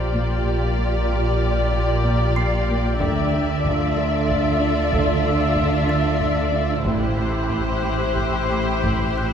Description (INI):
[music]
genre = cinematic, suspense film score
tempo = 94 BPM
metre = 3/4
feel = straight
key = unclear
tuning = A4 = 440 Hz
[part]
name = muted symphonic violin section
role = melody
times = 0.0-9.3 s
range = C5 to D5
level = -27 LUFS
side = left 5 dB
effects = none
[part]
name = muted symphonic violin section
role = second line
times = 0.0-9.3 s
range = F4 to G4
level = -30 LUFS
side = left 1 dB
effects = none
[part]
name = muted symphonic viola section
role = accompaniment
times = 0.0-9.3 s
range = E4 to E5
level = -27 LUFS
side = right 2 dB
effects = none
[part]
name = bubbling stepped-filter texture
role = sustained chords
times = 0.0-9.3 s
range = F4 to E5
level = -29 LUFS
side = equal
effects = chorus, built-in reverb
[part]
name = muted studio double bass section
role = bass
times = 0.0-9.3 s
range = A1 to D2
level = -28 LUFS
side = right 2 dB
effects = none
[part]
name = muted symphonic cello section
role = bass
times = 0.0-9.3 s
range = A2 to D3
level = -27 LUFS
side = right 1 dB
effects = none
[part]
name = warm sub bass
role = drone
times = 0.0-9.3 s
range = A1 to D2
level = -26 LUFS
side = equal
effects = none
[part]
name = music box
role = texture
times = 0.0-9.3 s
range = C6 to C7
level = -33 LUFS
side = right 4 dB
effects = none
[part]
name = muted symphonic violin section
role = texture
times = 0.0-2.7, 6.8-9.3 s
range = C6 to Gb6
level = -35 LUFS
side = left 4 dB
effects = none
[part]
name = muted symphonic cello section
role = riff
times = 0.1-9.3 s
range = A2 to D4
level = -29 LUFS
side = equal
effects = none
[part]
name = taiko ensemble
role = drums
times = 3.0-9.3 s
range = none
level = -30 LUFS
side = equal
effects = none
[sound]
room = wet scoring stage reverb, RT60 1.5 s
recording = heard from further back in the room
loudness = -18 LUFS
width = side -8 dB against mid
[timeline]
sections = 0.0-9.3 A section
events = none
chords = 0.0 Bb6; 3.0 Dmadd9; 6.9 Am7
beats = 0.46 | 1.10 1.74 2.37 | 3.01 3.65 4.29 | 4.93 5.57 6.21 | 6.85 7.50 8.16 | 8.84